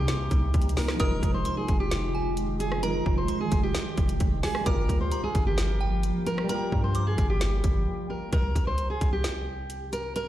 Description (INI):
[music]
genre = hip hop, trap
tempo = 131 BPM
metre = 4/4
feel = half-time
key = C minor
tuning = A4 = 443 Hz
[part]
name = fingerpicked steel-string acoustic guitar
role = melody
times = 0.0-10.3 s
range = G4 to C5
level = -32 LUFS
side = equal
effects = low-pass filter, digital delay
[part]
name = delicate synth tine bell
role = second line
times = 0.0-8.3 s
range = G5 to Eb6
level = -38 LUFS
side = right 4 dB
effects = chorus, digital delay
[part]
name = dark baby grand piano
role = accompaniment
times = 0.0-8.3 s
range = C3 to Bb4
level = -35 LUFS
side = equal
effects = low-pass filter
[part]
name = granular cloud pad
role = sustained chords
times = 0.0-8.3 s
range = C3 to G4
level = -34 LUFS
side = right 2 dB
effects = built-in reverb
[part]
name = long sustained 808-style bass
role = bass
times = 0.0-10.3 s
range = F1 to G2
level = -28 LUFS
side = equal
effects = none
[part]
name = trap drum kit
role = drums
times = 0.1-10.3 s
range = hi-hat, kick drum, rim click, snare drum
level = -27 LUFS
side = equal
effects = none
[sound]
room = little or no reverb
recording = played on a big sound system in a bare room, large studio reverb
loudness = -24 LUFS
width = side -13 dB against mid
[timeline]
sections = 0.0-8.3 A section; 8.3-10.3 B section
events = break 7.9-8.3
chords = 0.0 Cm7; 1.0 Fm7; 4.7 Gm7; 8.3 C5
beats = 0.08 0.54 | 1.00 1.46 1.91 2.37 | 2.83 3.29 3.75 4.20 | 4.66 5.12 5.58 6.04 | 6.49 6.95 7.41 7.87 | 8.33 8.78 9.24 9.70 | 10.16